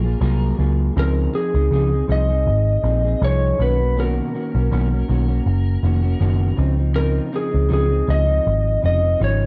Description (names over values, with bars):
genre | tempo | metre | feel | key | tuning
indie pop, bedroom pop | 80 BPM | 4/4 | swing 55% on 16ths | Db major | A4 = 440 Hz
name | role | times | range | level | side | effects
electric slide guitar | melody | 0.0-9.5 s | Ab4 to Eb5 | -26 LUFS | equal | lush chorus, cassette tape
semi-hollow electric guitar | accompaniment | 0.0-9.5 s | Cb3 to Ab4 | -27 LUFS | equal | subtle chorus, vibrato effect, cassette tape
vintage muted picked electric bass | bass | 0.0-9.5 s | F1 to Db2 | -20 LUFS | equal | none
room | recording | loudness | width
little or no reverb | home recording on cassette | -19 LUFS | mono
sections
0.0-9.5 A section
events
none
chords
0.0 Gbmaj9; 1.0 Dbmaj9; 3.6 Cbmaj9; 6.6 Dbmaj9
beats
0.21 | 0.96 1.71 2.46 3.21 | 3.96 4.71 5.46 6.21 | 6.96 7.71 8.46 9.21